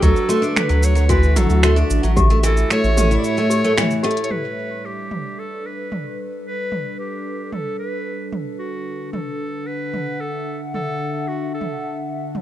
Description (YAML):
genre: folktronica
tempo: 112 BPM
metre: 4/4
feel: straight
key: G lydian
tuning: A4 = 440 Hz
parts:
  - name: bright clarinet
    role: melody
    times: 0.0-12.0 s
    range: F#4 to D5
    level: -27 LUFS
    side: right 1 dB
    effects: ping-pong delay
  - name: warbly tape-like pad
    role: sustained chords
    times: 0.0-12.4 s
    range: A2 to F#5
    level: -26 LUFS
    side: equal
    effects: chorus, built-in reverb
  - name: picked steel-string acoustic guitar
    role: arpeggios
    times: 0.0-4.3 s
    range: E3 to E4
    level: -21 LUFS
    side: equal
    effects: none
  - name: warm sub bass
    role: bass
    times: 0.0-3.2 s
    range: A1 to D2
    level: -16 LUFS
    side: equal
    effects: none
  - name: electronic kick drum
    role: drums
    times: 0.0-2.3 s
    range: none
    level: -19 LUFS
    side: equal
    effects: none
  - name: organic electronic drum kit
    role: drums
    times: 0.0-12.4 s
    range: finger snaps, hi-hat, shaker, toms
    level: -25 LUFS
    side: right 2 dB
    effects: none
  - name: toy piano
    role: second line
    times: 0.3-4.2 s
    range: F#4 to G4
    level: -26 LUFS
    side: left 4 dB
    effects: vintage 12-bit sampler grit, ping-pong delay
room: light reverb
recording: rough home demo mix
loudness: -18 LUFS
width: side -13 dB against mid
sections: 0.0-4.3 A section; 4.3-12.4 B section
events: break 3.2-4.3; band accent 3.8; drum fill 4.0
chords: 0.0 Dadd9; 2.2 A; 4.3 Gadd9; 8.6 Dadd9